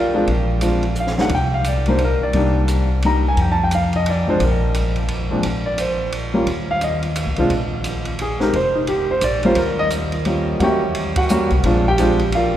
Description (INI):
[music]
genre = jazz piano trio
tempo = 174 BPM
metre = 3/4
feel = swing 62% on 8ths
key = Bb mixolydian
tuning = A4 = 438 Hz
[part]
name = warm grand piano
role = melody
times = 0.0-12.6 s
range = Bb2 to Bb5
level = -18 LUFS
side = equal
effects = none
[part]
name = upright bass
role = bass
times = 0.0-12.6 s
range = F1 to F2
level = -21 LUFS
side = equal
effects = none
[part]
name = compact cocktail drum kit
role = drums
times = 0.3-12.4 s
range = hi-hat, kick drum, ride cymbal, snare drum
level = -28 LUFS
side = right 1 dB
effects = none
[sound]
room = wet cathedral reverb, RT60 6.4 s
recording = recorded in a church or concert hall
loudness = -16 LUFS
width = side -11 dB against mid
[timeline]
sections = 0.0-5.4 A section; 5.4-12.6 A section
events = drum fill 1.0-1.3; band accent 11.1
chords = 0.0 Bb7; 1.3 Cm7; 3.4 F5; 4.4 N.C.; 6.5 Cmadd11 (rootless); 7.5 Bb7(no3); 8.5 Csus4/F; 9.2 Bb; 9.6 Eb7; 10.6 Edim7; 11.6 Bb7